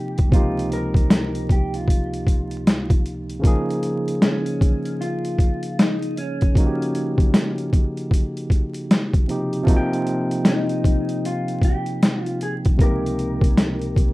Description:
lo-fi hip hop; 77 BPM; 4/4; swing 61% on 16ths; Bb dorian; A4 = 440 Hz
mellow electric guitar; melody; 0.0-14.1 s; Db4 to Bb4; -29 LUFS; left 2 dB; lush chorus, low-pass filter, tape echo
barky tine electric piano; accompaniment; 0.0-14.1 s; Db2 to G5; -24 LUFS; right 1 dB; medium stereo tremolo, low-pass filter
boom bap sampler-style drum kit; drums; 0.2-14.1 s; hi-hat, kick drum, snare drum; -17 LUFS; equal; overdrive
light reverb; rough home demo mix, vinyl crackle; -18 LUFS; side -20 dB against mid
0.0-14.1 A section
0.3 Db6; 3.4 Bbm11; 9.7 Abmaj13/C (rootless); 12.8 Db6
| 0.32 1.10 1.88 2.66 | 3.44 4.22 5.00 5.78 | 6.56 7.34 8.12 8.89 | 9.67 10.45 11.23 12.01 | 12.79 13.57

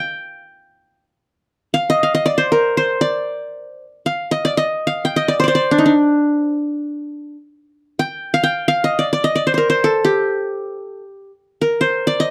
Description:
Arabic maqam ensemble; free time; D maqam kurd; A4 = 441 Hz
qanun; solo; 0.0-12.3 s; D4 to G5; -18 LUFS; equal
light reverb; dry, close 1970s-style studio recording; -18 LUFS; mono
0.0-7.7 A section; 7.7-12.3 A section
free time

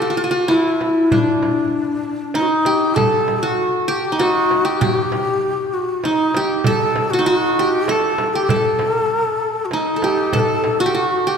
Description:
Arabic maqam ensemble; 98 BPM; 3/4; straight; A4 = 438 Hz
qanun; melody; 0.0-11.4 s; D4 to B4; -18 LUFS; right 1 dB
breathy mellow ney; second line; 0.0-11.3 s; D4 to B4; -21 LUFS; left 3 dB
darbuka; percussion; 0.2-11.3 s; -30 LUFS; left 3 dB
frame drum; percussion; 0.5-10.8 s; -26 LUFS; right 3 dB
wet church reverb, RT60 2.7 s; recorded in a church or concert hall; -15 LUFS; side -6 dB against mid
0.0-3.0 A section; 3.0-11.4 B section
drum fill 2.3-3.0, 9.7-10.3
0.50 | 1.12 1.73 2.35 | 2.96 3.58 4.19 | 4.81 5.42 6.04 | 6.65 7.26 7.88 | 8.49 9.10 9.72 | 10.33 10.94

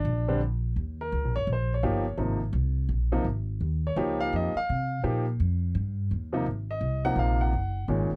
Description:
jazz; 168 BPM; 4/4; swing 64% on 8ths; Eb mixolydian; A4 = 443 Hz
clear baby grand piano; melody; 0.0-8.1 s; Bb2 to Gb5; -31 LUFS; equal
upright bass; bass; 0.0-8.1 s; Gb1 to C3; -30 LUFS; equal
little or no reverb; dry, close 1970s-style studio recording; -28 LUFS; mono
0.8-8.2 A section
grand piano solo 0.8-8.2
0.1 Bb; 0.8 Eb7; 2.2 Abadd9; 3.6 Eb9; 6.5 Ab9
0.05 0.41 | 0.76 1.12 1.48 1.83 | 2.19 2.54 2.90 3.26 | 3.61 3.97 4.32 4.68 | 5.04 5.39 5.75 6.10 | 6.46 6.82 7.17 7.53 | 7.88

